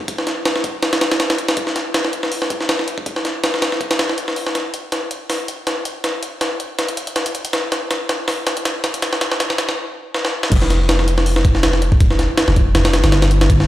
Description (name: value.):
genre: drum and bass, jungle.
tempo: 161 BPM.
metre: 4/4.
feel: swing 54% on 16ths.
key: unclear.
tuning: A4 = 440 Hz.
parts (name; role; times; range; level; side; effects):
jungle sampler-style drum kit; drums; 0.0-13.7 s; crash cymbal, hi-hat, kick drum, snare drum; -17 LUFS; equal; high-pass filter on hats, high-pass filter on snare, high-pass filter on kick, high-pass filter on cymbals, high-pass filter on room.
long sustained 808-style bass; bass; 10.5-13.7 s; F1 to G1; -15 LUFS; equal; none.
room: light reverb.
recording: played on a big sound system in a bare room, stone room reverb.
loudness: -16 LUFS.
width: side -14 dB against mid.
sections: 0.0-10.5 A section; 10.5-13.7 B section.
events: build-up 0.0-10.5; drum fill 4.6-9.8, 10.1-10.5; stop 9.8-10.5; drop 10.5-13.7.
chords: none.